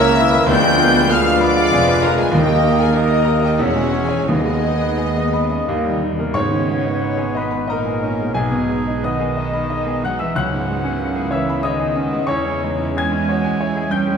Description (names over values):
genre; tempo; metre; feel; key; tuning
classical, romantic movement for piano and orchestra; 84-98 BPM; 3/4; rubato; G# minor; A4 = 439 Hz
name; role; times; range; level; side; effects
clear grand piano; melody; 0.0-14.2 s; B1 to G#6; -21 LUFS; left 1 dB; none
warm symphonic violin section; melody; 0.0-14.2 s; E4 to G6; -28 LUFS; left 4 dB; none
clear oboe; second line; 0.0-14.2 s; G#4 to G#5; -29 LUFS; right 1 dB; none
mellow hollow small flute group; second line; 0.0-14.2 s; G#4 to G6; -27 LUFS; left 4 dB; none
warm chamber violin section; second line; 0.0-14.2 s; B3 to G5; -28 LUFS; left 3 dB; none
warm clarinet; second line; 0.0-6.0 s; G4 to B4; -28 LUFS; equal; none
clear bassoon; accompaniment; 0.0-14.2 s; G#3 to F#4; -28 LUFS; right 1 dB; none
dark symphonic viola section; accompaniment; 0.0-14.2 s; E3 to G#4; -28 LUFS; left 1 dB; none
warm French horn section; sustained chords; 0.0-14.1 s; D#3 to A#4; -27 LUFS; left 3 dB; none
warm trombone section; sustained chords; 0.0-6.0 s; C#3 to A#3; -26 LUFS; right 4 dB; none
dark trumpet section; stabs; 0.0-6.0 s; A#4 to D#5; -24 LUFS; equal; none
warm chamber double bass section; bass; 0.0-14.2 s; E1 to E2; -27 LUFS; right 4 dB; none
warm symphonic cello section; bass; 0.0-14.2 s; C#2 to G#3; -25 LUFS; right 2 dB; none
timpani; percussion; 2.3-7.3 s; G#2 to D#3; -23 LUFS; equal; none
room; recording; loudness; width
wet recital hall reverb, RT60 1.5 s; none; -15 LUFS; side -6 dB against mid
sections
0.0-6.4 A section; 6.4-14.2 B section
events
timpani fill 5.7-6.4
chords
0.5 Ddim7; 2.3 D#; 3.6 C#m/E; 4.3 G#m/D#; 5.7 D#; 6.4 G#m; 8.4 G#m/B; 10.4 C#m7; 12.3 C#m/E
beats
| 0.49 1.10 1.72 | 2.34 2.96 3.60 | 4.29 5.00 5.68 | 6.35 7.03 7.70 | 8.35 9.05 9.71 | 10.36 10.99 11.64 | 12.28 12.97 13.61